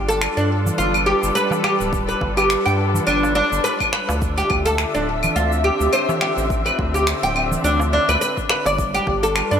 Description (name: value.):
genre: organic downtempo.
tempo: 105 BPM.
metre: 4/4.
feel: swing 56% on 16ths.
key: G mixolydian.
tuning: A4 = 440 Hz.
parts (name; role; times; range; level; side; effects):
muted studio string section; sustained chords; 0.0-9.6 s; D3 to E5; -25 LUFS; left 1 dB; sidechain pumping.
round analog bass; bass; 0.0-9.6 s; D1 to G2; -23 LUFS; equal; tube saturation, sidechain pumping.
oud; arpeggios; 0.1-9.6 s; D4 to G5; -20 LUFS; equal; ping-pong delay.
electronic cabasa, finger snaps and claves; drums; 0.1-9.6 s; none; -24 LUFS; equal; none.
darbuka; percussion; 0.1-9.3 s; none; -30 LUFS; right 2 dB; none.
electronic kick drum; drums; 1.9-9.2 s; none; -26 LUFS; equal; none.
room: moderate lush hall reverb, RT60 2.2 s.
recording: none.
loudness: -16 LUFS.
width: side -8 dB against mid.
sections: 0.0-9.6 A section.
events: none.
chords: 0.0 G7; 4.2 Dm9; 8.8 G7.